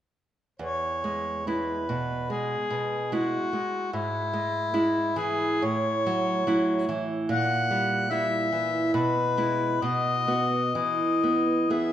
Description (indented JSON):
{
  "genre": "romantic duo for harmonica and classical guitar",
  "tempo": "71 BPM",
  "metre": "4/4",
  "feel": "uneven beats, rubato",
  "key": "E major",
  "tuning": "A4 = 440 Hz",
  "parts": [
    { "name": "mellow harmonica", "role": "melody", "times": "0.6-11.9 s", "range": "E4 to F#5", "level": "-27 LUFS", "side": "left 3 dB", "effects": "none" },
    { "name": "nylon-string guitar", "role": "accompaniment", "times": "0.6-11.9 s", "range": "E2 to G#4", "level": "-27 LUFS", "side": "right 2 dB", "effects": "none" }
  ],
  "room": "wet recital hall reverb, RT60 1.5 s",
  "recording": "recorded in a church or concert hall",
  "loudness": "-24 LUFS",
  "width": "side -10 dB against mid",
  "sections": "0.6-11.9 A section",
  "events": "none",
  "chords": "0.6 E; 3.9 E/G#; 5.6 F#m7/A; 7.3 F#7b9/A#; 8.9 E/B; 9.8 B; 10.8 E"
}